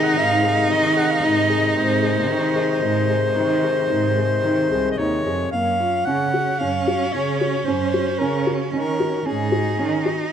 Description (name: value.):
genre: contemporary instrumental, chamber music in an uneven meter.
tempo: 113 BPM.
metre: 7/4.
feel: straight.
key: Gb lydian.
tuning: A4 = 444 Hz.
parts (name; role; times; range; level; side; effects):
clear soprano saxophone; melody; 0.0-10.3 s; Ab4 to Gb5; -23 LUFS; left 2 dB; none.
rich cello; second line; 0.0-10.3 s; Db4 to Eb4; -24 LUFS; right 2 dB; none.
pedal harmonium; sustained chords; 0.0-5.5 s; C3 to Ab3; -28 LUFS; left 2 dB; none.
felt-muted upright piano; arpeggios; 0.0-10.3 s; Bb3 to Ab4; -25 LUFS; left 2 dB; none.
dark cello; bass; 0.0-10.0 s; C2 to Eb3; -25 LUFS; right 3 dB; none.
room: moderate recital hall reverb, RT60 1.5 s.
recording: minimal, uncompressed stereo recording.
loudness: -18 LUFS.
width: side -8 dB against mid.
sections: 0.0-5.5 A section; 5.5-10.3 B section.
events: none.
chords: 0.0 Ab; 5.5 Gbmaj7; 9.3 Ab7sus4.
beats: 0.17 0.70 1.23 | 1.76 2.29 2.83 3.36 3.90 4.44 4.99 | 5.53 6.07 6.60 7.14 7.67 8.20 8.73 | 9.26 9.79 10.31.